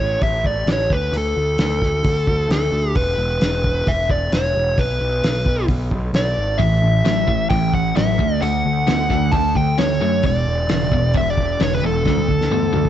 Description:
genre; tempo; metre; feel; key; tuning
classic rock; 132 BPM; 4/4; straight; unclear; A4 = 440 Hz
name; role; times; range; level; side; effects
dark smooth lead guitar; melody; 0.0-12.9 s; A4 to A5; -21 LUFS; equal; overdrive, digital delay
fuzz picked electric bass; bass; 0.0-12.9 s; E1 to F#2; -22 LUFS; equal; overdrive
cloth-damped thuddy drum kit; drums; 0.2-12.9 s; hi-hat, kick drum, snare drum, toms; -22 LUFS; equal; none
biting overdriven guitar; riff; 6.6-12.9 s; E2 to B3; -23 LUFS; left 11 dB; none
cranked stack guitar; riff; 6.6-12.9 s; E2 to B3; -22 LUFS; right 9 dB; overdrive
room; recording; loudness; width
studio ambience; nothing above 8.0 kHz; -16 LUFS; side -10 dB against mid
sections
0.0-12.9 A section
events
drum fill 12.1-12.9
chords
0.0 A; 0.9 D5; 3.0 E5; 4.8 Bm; 6.6 A5; 8.2 D; 10.2 E5; 12.1 D5

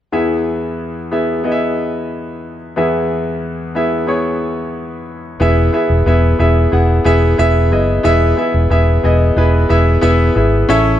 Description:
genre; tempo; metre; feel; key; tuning
pop; 91 BPM; 4/4; straight; E major; A4 = 440 Hz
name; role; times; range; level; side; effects
bright concert grand piano; accompaniment; 0.1-11.0 s; E2 to F#5; -14 LUFS; left 1 dB; none
vintage muted fingered electric bass; bass; 5.4-11.0 s; E1 to A1; -13 LUFS; equal; none
room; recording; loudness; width
moderate large studio reverb, RT60 1.4 s; none; -12 LUFS; side -11 dB against mid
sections
0.1-5.4 A section; 5.4-11.0 B section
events
none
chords
0.1 E

